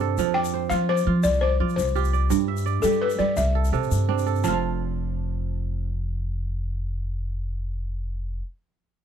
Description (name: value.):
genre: west african traditional, West African string and xylophone music.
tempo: 113 BPM (dotted quarters).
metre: 12/8.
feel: straight.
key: F major.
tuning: A4 = 441 Hz.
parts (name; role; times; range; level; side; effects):
kora; arpeggios; 0.0-8.5 s; G2 to F5; -27 LUFS; right 16 dB; none.
upright bass; bass; 0.0-8.4 s; F1 to G3; -25 LUFS; equal; none.
egg shaker; percussion; 0.2-4.6 s; none; -39 LUFS; left 22 dB; none.
balafon; melody; 0.3-8.4 s; A4 to A5; -24 LUFS; left 5 dB; none.
room: small room ambience.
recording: dry, close 1970s-style studio recording.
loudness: -22 LUFS.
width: side -8 dB against mid.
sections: 0.0-4.4 A section; 4.4-8.7 B section.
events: none.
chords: 0.2 F; 2.3 G5; 3.4 C; 4.4 F.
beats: | 0.17 0.70 1.24 1.77 | 2.31 2.84 3.37 3.91 | 4.44 4.97 5.50 6.04 | 6.57 7.10 7.63 8.16.